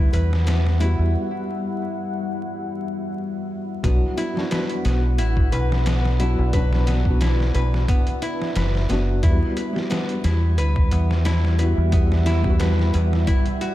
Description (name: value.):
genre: trip hop.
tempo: 89 BPM.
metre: 4/4.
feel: swing 54% on 16ths.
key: B minor.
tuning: A4 = 440 Hz.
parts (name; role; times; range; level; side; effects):
felt-muted upright piano; accompaniment; 0.0-13.7 s; F#3 to F#4; -28 LUFS; equal; tremolo, vintage 12-bit sampler grit, tape echo.
deep dark ambient pad; sustained chords; 0.0-13.7 s; G3 to F#5; -30 LUFS; left 1 dB; chorus, built-in reverb.
nylon-string guitar; arpeggios; 0.0-13.7 s; B3 to B4; -29 LUFS; left 2 dB; analog delay.
deep dub fingered electric bass; bass; 0.0-13.2 s; F#1 to E2; -19 LUFS; equal; tube saturation.
trip hop sampler-style drum kit; drums; 0.1-13.7 s; hi-hat, kick drum, snare drum; -23 LUFS; equal; overdrive, studio reverb.
room: light reverb.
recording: vinyl crackle.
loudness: -18 LUFS.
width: side -15 dB against mid.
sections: 0.0-3.8 A section; 3.8-13.7 B section.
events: break 1.1-3.8.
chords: 0.0 Emadd9; 3.8 Bm; 9.2 Emadd9.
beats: 0.47 | 1.14 1.82 2.49 3.16 | 3.84 4.51 5.19 5.86 | 6.54 7.21 7.88 8.56 | 9.23 9.91 10.58 11.25 | 11.93 12.60 13.28.